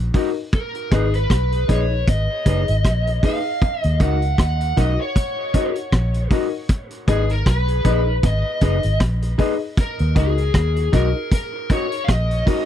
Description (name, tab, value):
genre	roots reggae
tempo	78 BPM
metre	4/4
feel	swing 57% on 16ths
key	Eb minor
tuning	A4 = 440 Hz
part	vintage muted fingered electric bass	bass	0.0-12.4 s	Gb1 to Eb2	-19 LUFS	equal	none
part	electric guitar at the edge of break-up	accompaniment	0.1-12.6 s	Eb4 to Cb5	-28 LUFS	equal	dub echo
part	dark upright piano	stabs	0.1-12.7 s	Eb4 to Eb5	-26 LUFS	left 8 dB	none
part	vintage drum kit	drums	0.1-12.7 s	hi-hat, kick drum, rim click	-18 LUFS	equal	none
part	lead guitar through a small cranked amp	melody	0.5-12.7 s	Ab4 to Gb5	-25 LUFS	equal	overdrive, dub echo
room	little or no reverb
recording	dry, close 1970s-style studio recording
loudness	-17 LUFS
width	side -10 dB against mid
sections	0.0-12.7 A section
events	none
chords	0.0 Ebm; 0.5 Abm; 3.6 Ebm; 6.7 Abm; 9.8 Ebm